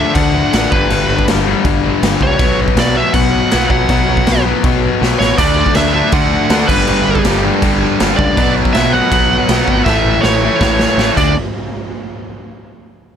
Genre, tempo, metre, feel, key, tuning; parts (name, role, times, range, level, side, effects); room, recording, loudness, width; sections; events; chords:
punk rock; 161 BPM; 4/4; straight; A4 = 441 Hz
high-gain lead guitar; melody; 0.0-11.3 s; B4 to F#5; -16 LUFS; right 2 dB; distortion
distorted electric guitar; riff; 0.0-11.3 s; G2 to D4; -21 LUFS; right 2 dB; distortion
overdriven electric guitar; riff; 0.0-11.3 s; G2 to D4; -17 LUFS; left 12 dB
growling picked electric bass; bass; 0.0-11.3 s; G1 to D2; -19 LUFS; equal; overdrive
raw garage drum kit; drums; 0.1-11.3 s; crash cymbal, kick drum, snare drum, splash cymbal; -17 LUFS; right 1 dB
distorted electric guitar; riff; 5.4-11.3 s; G2 to D4; -19 LUFS; right 15 dB; overdrive
little or no reverb; -10 LUFS; side -8 dB against mid
0.0-11.4 A section; 11.4-12.9 B section
drum fill 5.0-5.4, 9.9-11.4
0.0 D; 0.7 G; 2.4 B5; 5.4 D; 6.7 G; 8.4 B5; 9.9 A; 11.2 D5; 11.4 N.C.